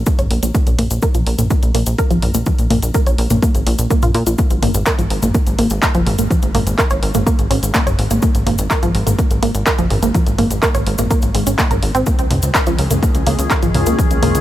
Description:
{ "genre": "melodic techno", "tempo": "125 BPM", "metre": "4/4", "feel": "straight", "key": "unclear", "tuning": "A4 = 439 Hz", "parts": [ { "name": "plucky analog bass", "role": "bass", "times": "0.0-14.4 s", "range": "Gb1 to Bb2", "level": "-18 LUFS", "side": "equal", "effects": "sidechain pumping" }, { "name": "wide unison pluck", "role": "arpeggios", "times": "0.1-14.3 s", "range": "F3 to Db5", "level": "-20 LUFS", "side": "right 1 dB", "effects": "sidechain pumping, tape echo" }, { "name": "electronic kick drum", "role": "drums", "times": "0.1-14.1 s", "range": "none", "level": "-17 LUFS", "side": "equal", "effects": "studio reverb" }, { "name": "punchy analog drum machine", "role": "drums", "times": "0.1-14.4 s", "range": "handclaps, hi-hat, toms", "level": "-22 LUFS", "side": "equal", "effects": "sidechain pumping on hats, studio reverb, sidechain pumping on toms" }, { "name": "cabasa", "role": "percussion", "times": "0.1-14.4 s", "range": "none", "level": "-28 LUFS", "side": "left 3 dB", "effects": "none" }, { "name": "evolving wavetable pad", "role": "sustained chords", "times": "12.5-14.4 s", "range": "Eb3 to Ab4", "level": "-22 LUFS", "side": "left 2 dB", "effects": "chorus, built-in reverb, sidechain pumping" } ], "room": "digital ambience", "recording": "none", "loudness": "-13 LUFS", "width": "side -13 dB against mid", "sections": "0.0-14.4 A section", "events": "filter sweep on synth pluck 0.0-14.4", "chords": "0.0 Bb7(no3); 4.4 Absus2; 12.1 Dbadd9" }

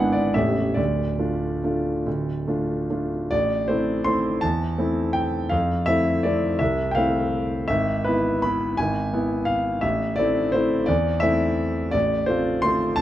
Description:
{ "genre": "classical, piano waltz", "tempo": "137-182 BPM", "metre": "3/4", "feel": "rubato", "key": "D minor, A minor from 3.3 s", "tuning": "A4 = 440 Hz", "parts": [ { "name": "warm grand piano", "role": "solo", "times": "0.0-13.0 s", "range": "A0 to C6", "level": "-20 LUFS", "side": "equal", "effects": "none" } ], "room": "moderate recital hall reverb, RT60 1.6 s", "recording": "close, detailed microphones", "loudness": "-20 LUFS", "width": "side -13 dB against mid", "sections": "0.0-3.3 A section; 3.3-13.0 B section", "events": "none", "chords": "0.4 A7; 0.8 Dm; 3.3 Am; 5.5 Fmaj7; 7.7 E/G#; 9.8 Am; 11.9 F/A" }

